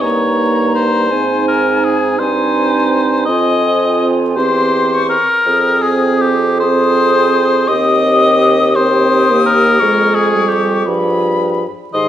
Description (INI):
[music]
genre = classical, slow romantic movement for wind quintet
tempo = 55 BPM (dotted quarters)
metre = 6/8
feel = rubato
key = C minor from 7.7 s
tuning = A4 = 441 Hz
[part]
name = bright concert flute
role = melody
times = 0.0-12.1 s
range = Ab5 to Eb6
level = -21 LUFS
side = left 4 dB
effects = none
[part]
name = warm oboe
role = second line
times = 0.0-12.1 s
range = G4 to Eb5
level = -14 LUFS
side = left 3 dB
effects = none
[part]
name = dark clarinet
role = accompaniment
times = 0.0-12.1 s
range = Eb4 to Ab4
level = -20 LUFS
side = right 5 dB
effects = none
[part]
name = mellow French horn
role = accompaniment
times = 0.0-12.1 s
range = Eb3 to C4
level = -19 LUFS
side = right 1 dB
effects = none
[part]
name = dark bassoon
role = bass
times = 0.0-12.1 s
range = Eb2 to Ab2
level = -17 LUFS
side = right 2 dB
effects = none
[sound]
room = moderate recital hall reverb, RT60 1.3 s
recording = vinyl crackle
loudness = -11 LUFS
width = side -10 dB against mid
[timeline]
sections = 0.0-12.1 A section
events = none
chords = 0.0 Eb/G; 1.1 Ab; 3.3 Fm7; 4.4 C/E; 5.5 Fm7; 7.7 Cm/Eb; 9.8 Db/F; 10.9 G7b9